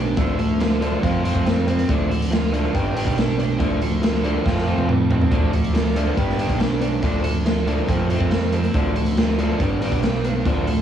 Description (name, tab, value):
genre	indie rock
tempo	140 BPM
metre	4/4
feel	straight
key	D dorian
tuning	A4 = 439 Hz
part	cranked stack guitar	riff	0.0-10.8 s	D3 to A4	-30 LUFS	right 11 dB	overdrive, lush chorus, cassette tape, tape echo
part	overdriven electric guitar	riff	0.0-10.8 s	F3 to G4	-23 LUFS	left 3 dB	cassette tape
part	fuzz fingered electric bass	bass	0.0-10.8 s	G1 to F2	-23 LUFS	right 2 dB	overdrive
part	raw garage drum kit	drums	0.2-10.8 s	hi-hat, kick drum, snare drum, toms	-22 LUFS	right 1 dB	none
room	small room ambience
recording	home recording on cassette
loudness	-18 LUFS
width	side -9 dB against mid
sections	0.0-10.8 A section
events	drum fill 4.5-5.3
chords	0.2 Dm; 1.0 Fadd9; 1.9 Dm; 2.7 G; 3.6 Dm; 4.5 Fadd9; 5.3 Dm; 6.2 G; 7.0 Dm; 7.9 Fadd9; 8.7 Dm; 9.6 G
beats	| 0.17 0.60 1.03 1.46 | 1.89 2.32 2.74 3.17 | 3.60 4.03 4.46 4.88 | 5.31 5.74 6.17 6.60 | 7.03 7.45 7.88 8.31 | 8.74 9.17 9.60 10.02 | 10.45